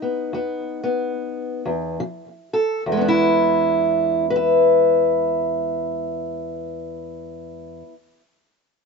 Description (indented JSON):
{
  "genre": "acoustic country blues, solo or duo",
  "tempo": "68-75 BPM",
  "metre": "4/4",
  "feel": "swing 61% on 8ths",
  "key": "E major",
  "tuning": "A4 = 440 Hz",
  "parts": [
    { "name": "fingerpicked steel-string acoustic guitar", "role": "solo", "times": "0.0-7.9 s", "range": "E2 to E5", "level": "-19 LUFS", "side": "equal", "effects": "slapback echo" }
  ],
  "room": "little or no reverb",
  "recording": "recorded outdoors, with no room sound, nothing above 7.9 kHz",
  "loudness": "-18 LUFS",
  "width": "side -4 dB against mid",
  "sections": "0.0-2.9 A section; 2.9-6.4 B section",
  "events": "slowing down 0.0-2.9; stop 0.0-2.0",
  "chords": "0.0 E5; 2.0 F; 2.9 E7"
}